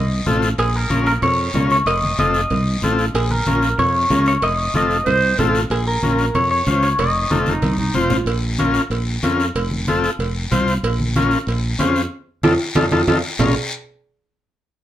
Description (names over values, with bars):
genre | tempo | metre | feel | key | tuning
latin, cumbia | 187 BPM | 4/4 | straight | Bb harmonic minor | A4 = 438 Hz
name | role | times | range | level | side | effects
clean electric guitar | melody | 0.0-7.9 s | Ab4 to Eb5 | -20 LUFS | equal | spring reverb
fretless electric bass | bass | 0.0-13.5 s | F1 to F2 | -21 LUFS | equal | none
overdriven combo organ | accompaniment | 0.3-13.5 s | C4 to C5 | -19 LUFS | left 3 dB | none
congas | percussion | 0.3-13.5 s | none | -25 LUFS | right 1 dB | none
guiro | percussion | 0.3-13.5 s | none | -30 LUFS | left 4 dB | none
cowbell and timbales | percussion | 0.6-13.5 s | none | -24 LUFS | right 4 dB | none
breathy clarinet | second line | 5.1-8.3, 13.4-13.5 s | Eb4 to C5 | -21 LUFS | right 4 dB | none
room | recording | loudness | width
moderate studio ambience, RT60 0.5 s | band playing live in one room | -16 LUFS | side -12 dB against mid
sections
0.0-8.3 A section; 8.3-13.4 B section; 13.4-14.7 C section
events
drum fill 7.5-8.3; band accent 12.1-13.4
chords
0.0 F7; 0.6 Bbm; 1.9 F7; 3.1 Bbm; 4.4 F7; 5.7 Bbm; 7.0 F7; 8.3 Bbm; 9.6 F; 10.8 Bbm; 12.1 F7; 13.4 Bbm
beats
0.26 | 0.58 0.90 1.22 1.54 | 1.86 2.18 2.50 2.83 | 3.15 3.47 3.79 4.11 | 4.43 4.75 5.07 5.39 | 5.71 6.03 6.35 6.67 | 6.99 7.31 7.63 7.95 | 8.27 8.59 8.91 9.23 | 9.55 9.88 10.20 10.52 | 10.84 11.16 11.48 11.80 | 12.12 12.44 12.76 13.08 | 13.40